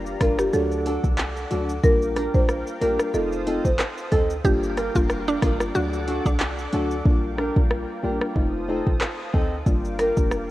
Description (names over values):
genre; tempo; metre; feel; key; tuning
dancehall; 92 BPM; 4/4; swing 56% on 16ths; G minor; A4 = 436 Hz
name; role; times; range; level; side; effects
deep mellow chord stab; accompaniment; 0.0-10.5 s; F#3 to F#4; -28 LUFS; left 1 dB; chorus
warm analog pad; sustained chords; 0.0-10.5 s; G4 to Eb6; -35 LUFS; equal; chorus, sidechain pumping
clean 808-style bass; bass; 0.0-10.5 s; F1 to D2; -30 LUFS; equal; none
afro-pop drum kit; drums; 0.1-10.5 s; handclaps, hi-hat, kick drum, rim click, shaker; -23 LUFS; equal; none
buzzing marimba with medium mallets; melody; 0.2-4.2, 10.0-10.1 s; G4 to C5; -25 LUFS; equal; tape echo
flamenco guitar; arpeggios; 0.2-10.2 s; C4 to Bb4; -31 LUFS; equal; none
mallet-like synth pluck; second line; 4.4-7.5 s; D4 to G4; -27 LUFS; right 1 dB; chorus, tape echo
room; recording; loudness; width
light reverb; rough home demo mix, cassette tape; -20 LUFS; side -16 dB against mid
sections
0.0-10.5 A section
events
hi-hats muted 7.1-9.7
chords
0.0 Gm7; 0.5 D; 1.8 Bb6; 3.1 F7; 4.4 Gm7; 5.8 D; 7.1 Bb6; 8.4 F7; 9.7 Gm7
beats
0.53 1.19 | 1.84 2.49 3.14 3.79 | 4.45 5.10 5.75 6.40 | 7.05 7.71 8.36 9.01 | 9.66 10.31